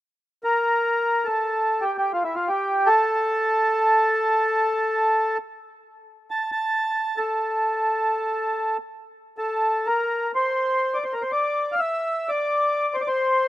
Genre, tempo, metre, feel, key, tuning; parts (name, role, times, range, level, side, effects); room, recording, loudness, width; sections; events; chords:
arabic; free time; A maqam kurd; A4 = 440 Hz
mellow accordion; solo; 0.4-13.5 s; E4 to A5; -20 LUFS; equal
light reverb, small room ambience; rough home demo mix; -20 LUFS; side -14 dB against mid
0.0-9.4 A section; 9.4-13.5 B section